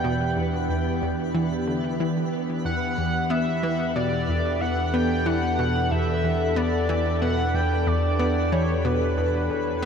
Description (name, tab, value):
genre	ambient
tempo	92 BPM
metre	4/4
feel	straight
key	E minor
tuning	A4 = 440 Hz
part	pulse-width lead	melody	0.0-9.9 s	B4 to G5	-28 LUFS	equal	chorus, cassette tape, shimmer reverb, ping-pong delay
part	evolving wavetable pad	sustained chords	0.0-9.9 s	E3 to E5	-27 LUFS	equal	chorus, built-in reverb, shimmer reverb
part	analog pluck	riff	0.0-9.9 s	E2 to B3	-28 LUFS	equal	chorus, ping-pong delay
part	round analog bass	bass	0.0-9.9 s	E2	-28 LUFS	equal	none
part	twinkling granular texture	texture	0.0-9.9 s	B4	-36 LUFS	equal	built-in reverb, wide subtle chorus, shimmer reverb
room	wet huge ambient reverb, RT60 8.2 s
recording	dreamy mix soaked in reverb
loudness	-22 LUFS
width	side -6 dB against mid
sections	0.0-9.9 A section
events	none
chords	0.0 Em7